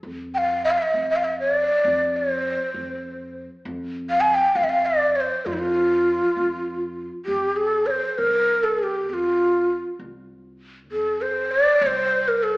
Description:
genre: arabic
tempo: 66 BPM (dotted quarters)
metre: 6/8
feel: straight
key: F maqam rast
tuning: A4 = 440 Hz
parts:
  - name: upright bass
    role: bass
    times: 0.0-12.6 s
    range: C2 to F2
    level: -36 LUFS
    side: equal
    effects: none
  - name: breathy mellow ney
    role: melody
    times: 0.3-12.6 s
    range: E4-47c to Ab5+41c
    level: -19 LUFS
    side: equal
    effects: none
room: wet large studio reverb, RT60 1.4 s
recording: band playing live in one room, AM radio sound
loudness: -19 LUFS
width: side -22 dB against mid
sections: 0.0-7.3 A section; 7.3-12.6 B section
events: none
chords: none

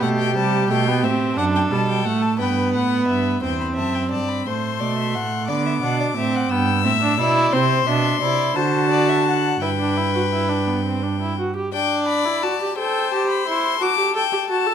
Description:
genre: classical, baroque-style fugue for string quartet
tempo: 58 BPM (dotted quarters)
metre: 6/8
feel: straight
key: C major, G major from 7.5 s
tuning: A4 = 440 Hz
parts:
  - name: rich violin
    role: melody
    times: 0.0-14.7 s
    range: E5 to E6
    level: -24 LUFS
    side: left 11 dB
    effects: none
  - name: warm violin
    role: second line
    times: 0.0-14.7 s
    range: G4 to G5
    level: -26 LUFS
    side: left 4 dB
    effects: none
  - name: warm viola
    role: accompaniment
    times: 0.0-14.7 s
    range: G3 to A4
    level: -22 LUFS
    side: right 2 dB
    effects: none
  - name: dark cello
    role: bass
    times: 0.0-11.3 s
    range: E2 to D3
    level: -23 LUFS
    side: right 5 dB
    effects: none
room: moderate recital hall reverb, RT60 1.8 s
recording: close, detailed microphones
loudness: -18 LUFS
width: side -8 dB against mid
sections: 0.0-3.4 A section; 3.4-11.7 B section; 11.7-14.7 C section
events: none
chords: 0.3 Am7; 1.4 D/F#; 2.4 G; 3.4 C/E; 4.5 F#dim/A; 6.5 Em/G; 7.5 C; 8.6 D; 9.6 G; 11.7 G/D; 12.8 Am7; 13.8 D/F#

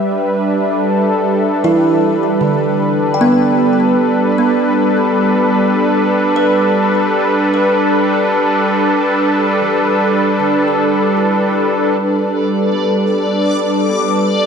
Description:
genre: ambient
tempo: 77 BPM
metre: 4/4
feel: straight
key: G major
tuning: A4 = 440 Hz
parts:
  - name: warm analog pad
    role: sustained chords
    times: 0.0-14.5 s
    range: G3 to E5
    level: -13 LUFS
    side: equal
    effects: chorus
  - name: kalimba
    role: arpeggios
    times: 0.0-14.5 s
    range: D3 to B5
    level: -18 LUFS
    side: right 1 dB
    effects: ping-pong delay
  - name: backwards swelling texture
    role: texture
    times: 12.4-14.5 s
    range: D5 to D6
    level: -20 LUFS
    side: left 3 dB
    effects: built-in reverb
room: wet lush hall reverb, RT60 3.0 s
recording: none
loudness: -12 LUFS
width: side -6 dB against mid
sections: 0.0-12.0 A section; 12.0-14.5 B section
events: none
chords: 0.0 Gadd9

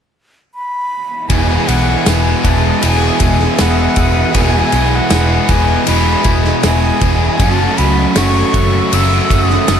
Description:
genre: rock, shoegaze and dream pop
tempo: 79 BPM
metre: 4/4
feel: straight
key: E major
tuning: A4 = 440 Hz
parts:
  - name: breathy concert flute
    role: melody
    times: 0.5-9.8 s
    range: F#5 to E6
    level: -19 LUFS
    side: equal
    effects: diffuse ambient delay
  - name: evolving wavetable pad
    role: sustained chords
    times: 2.4-9.8 s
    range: G#3 to D#6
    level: -24 LUFS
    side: right 1 dB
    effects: chorus, built-in reverb
  - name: overdriven electric guitar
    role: riff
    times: 1.3-9.8 s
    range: E2 to G#4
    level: -19 LUFS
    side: left 11 dB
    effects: wide subtle chorus
  - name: overdriven electric guitar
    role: riff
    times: 1.3-9.8 s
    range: E2 to F#3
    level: -20 LUFS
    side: left 1 dB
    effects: none
  - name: overdriven semi-hollow guitar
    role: riff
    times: 1.3-9.8 s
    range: E2 to F#4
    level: -18 LUFS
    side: right 9 dB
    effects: reverse reverb
  - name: vintage muted fingered electric bass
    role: bass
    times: 1.3-9.8 s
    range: E1 to C#2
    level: -15 LUFS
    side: equal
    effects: none
  - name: loose indie drum kit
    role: drums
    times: 1.3-9.8 s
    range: kick drum, ride cymbal, snare drum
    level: -17 LUFS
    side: equal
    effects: none
  - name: tambourine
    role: percussion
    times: 2.1-9.8 s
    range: none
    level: -28 LUFS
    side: right 15 dB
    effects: none
room: light reverb, small room ambience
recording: lossy compression artefacts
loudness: -10 LUFS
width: side -8 dB against mid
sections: 0.0-1.3 A section; 1.3-9.8 B section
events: none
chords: 0.0 N.C.; 1.3 Emaj7; 7.4 F#m7

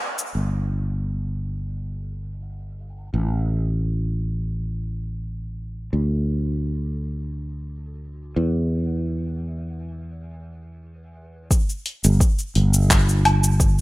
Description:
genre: sunset chillout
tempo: 86 BPM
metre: 4/4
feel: straight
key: unclear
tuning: A4 = 439 Hz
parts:
  - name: deep house drum kit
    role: drums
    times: 0.2-0.3, 11.5-13.8 s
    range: cabasa, handclaps, hi-hat, woodblock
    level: -23 LUFS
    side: equal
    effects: overdrive
  - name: sustaining fretless electric bass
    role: bass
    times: 0.3-13.8 s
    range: G1 to E2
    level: -22 LUFS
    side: equal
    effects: analog chorus
  - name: electronic kick drum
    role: drums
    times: 11.5-13.7 s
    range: none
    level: -18 LUFS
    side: equal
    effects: overdrive
room: little or no reverb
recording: rough home demo mix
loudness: -21 LUFS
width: side -20 dB against mid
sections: 0.3-11.5 A section; 11.5-13.8 B section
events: none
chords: none

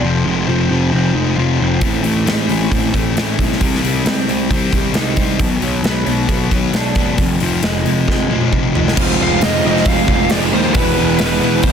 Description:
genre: quiet-loud alternative rock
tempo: 134 BPM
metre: 4/4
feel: straight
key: unclear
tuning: A4 = 440 Hz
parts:
  - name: electric guitar through a small old amp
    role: arpeggios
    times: 0.0-9.0 s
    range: F2 to F4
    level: -22 LUFS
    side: right 6 dB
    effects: slapback echo
  - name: sludgy distorted guitar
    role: riff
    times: 0.0-11.7 s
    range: F2 to F4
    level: -19 LUFS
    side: left 9 dB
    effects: overdrive
  - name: fuzz picked electric bass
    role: bass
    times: 0.0-11.7 s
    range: E1 to D#2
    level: -19 LUFS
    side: right 1 dB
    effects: overdrive
  - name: big rock drum kit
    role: drums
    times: 1.8-11.7 s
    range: crash cymbal, hi-hat, kick drum, snare drum, toms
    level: -18 LUFS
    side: equal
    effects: none
  - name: fuzz guitar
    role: riff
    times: 9.0-11.7 s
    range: E3 to F4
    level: -18 LUFS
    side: right 15 dB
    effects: distortion
  - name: biting lead guitar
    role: melody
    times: 9.2-11.7 s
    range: B4 to F5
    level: -19 LUFS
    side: left 2 dB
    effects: overdrive, slapback echo
room: light reverb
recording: dense, heavily limited modern master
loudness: -13 LUFS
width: side -7 dB against mid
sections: 0.0-9.0 A section; 9.0-11.7 B section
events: drum fill 8.1-9.0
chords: 0.0 Fm; 1.8 Am; 3.6 Cm; 5.4 Bm; 7.2 Fm; 10.7 E

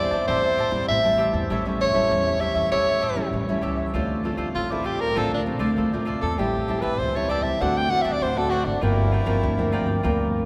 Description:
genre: samba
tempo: 98 BPM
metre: 4/4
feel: straight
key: D minor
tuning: A4 = 440 Hz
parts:
  - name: breathy soprano saxophone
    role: melody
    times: 0.0-10.0 s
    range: D4 to G5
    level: -27 LUFS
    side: equal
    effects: none
  - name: cavaquinho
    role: accompaniment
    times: 0.0-10.5 s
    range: D4 to A5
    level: -32 LUFS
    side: equal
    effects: none
  - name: nylon-string guitar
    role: accompaniment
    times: 0.0-10.5 s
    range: G2 to F#4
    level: -30 LUFS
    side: equal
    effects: none
  - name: upright bass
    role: bass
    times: 0.0-10.5 s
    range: G1 to E2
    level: -29 LUFS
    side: equal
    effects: none
room: wet cathedral reverb, RT60 6.2 s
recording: recorded in a church or concert hall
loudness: -23 LUFS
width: mono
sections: 0.0-3.9 A section; 3.9-10.5 B section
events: soprano saxophone solo 3.9-10.5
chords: 0.0 Am7; 1.5 A7; 3.9 Dm7; 6.4 Am7; 7.6 D7; 8.8 Gm7

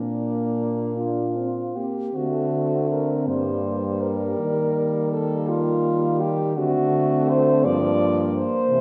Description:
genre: classical, lyrical piece for horn quartet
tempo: 55 BPM (dotted quarters)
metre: 6/8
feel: uneven beats, rubato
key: unclear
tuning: A4 = 440 Hz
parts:
  - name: warm French horn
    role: melody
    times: 0.0-8.8 s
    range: D4 to D5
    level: -27 LUFS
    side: equal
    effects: none
  - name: mellow French horn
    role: second line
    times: 0.0-8.8 s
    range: Bb3 to D4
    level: -30 LUFS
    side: equal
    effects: none
  - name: warm French horn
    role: accompaniment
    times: 0.0-8.8 s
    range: E3 to Bb3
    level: -31 LUFS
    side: equal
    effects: none
  - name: mellow French horn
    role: bass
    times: 0.0-8.8 s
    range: G2 to Eb3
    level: -28 LUFS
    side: equal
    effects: none
room: wet recital hall reverb, RT60 1.5 s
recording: none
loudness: -23 LUFS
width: mono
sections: 0.0-2.2 A section; 2.2-8.8 B section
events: none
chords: 0.0 Bb; 2.2 D7; 3.3 Gm; 4.4 Eb; 6.6 D7; 7.7 Gm7

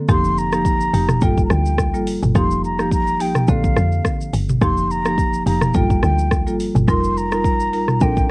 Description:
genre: afrobeats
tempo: 106 BPM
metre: 4/4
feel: swing 55% on 16ths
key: unclear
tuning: A4 = 440 Hz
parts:
  - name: marimba with medium mallets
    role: accompaniment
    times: 0.0-8.3 s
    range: D3 to Bb4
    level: -21 LUFS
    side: equal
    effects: cassette tape
  - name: mellow hollow concert flute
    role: melody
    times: 0.1-8.3 s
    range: F5 to C6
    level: -22 LUFS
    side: equal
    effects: none
  - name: deep log drum bass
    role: bass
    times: 0.1-8.2 s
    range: F1 to F2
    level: -20 LUFS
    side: equal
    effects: none
  - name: afro-pop drum kit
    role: drums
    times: 0.1-8.3 s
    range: hi-hat, kick drum, rim click, shaker, toms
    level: -19 LUFS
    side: equal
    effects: cassette tape
room: little or no reverb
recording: home recording on cassette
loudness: -15 LUFS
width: side -24 dB against mid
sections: 0.1-8.3 A section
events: none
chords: 0.1 F9sus4; 1.2 Gm9; 2.4 F9sus4; 3.5 Bbmaj9; 4.6 F9sus4; 5.7 Gm9; 6.9 F9sus4

